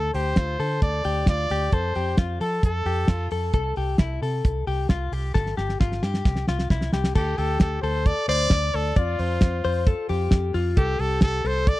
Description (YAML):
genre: jangly indie pop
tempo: 133 BPM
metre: 4/4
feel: straight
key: D minor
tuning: A4 = 440 Hz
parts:
  - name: bright trumpet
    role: melody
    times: 0.0-3.3, 7.2-11.8 s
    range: F4 to D5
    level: -28 LUFS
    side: right 1 dB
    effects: tape echo
  - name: direct-recorded clean electric guitar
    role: arpeggios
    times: 0.0-11.8 s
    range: E4 to D5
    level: -28 LUFS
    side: left 6 dB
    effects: spring reverb
  - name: vintage muted fingered electric bass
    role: bass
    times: 0.0-11.7 s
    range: G1 to F3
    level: -26 LUFS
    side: equal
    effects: none
  - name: cloth-damped thuddy drum kit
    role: drums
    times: 0.1-11.8 s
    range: crash cymbal, hi-hat, kick drum, snare drum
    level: -19 LUFS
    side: equal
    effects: none
room: little or no reverb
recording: dry, close 1970s-style studio recording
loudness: -21 LUFS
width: side -17 dB against mid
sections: 0.0-7.2 A section; 7.2-11.8 B section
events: drum fill 5.3-7.2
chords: 0.0 Dm; 1.7 F; 3.5 C; 5.3 Fadd9/G; 6.3 C; 7.2 D5; 9.0 F; 10.8 C5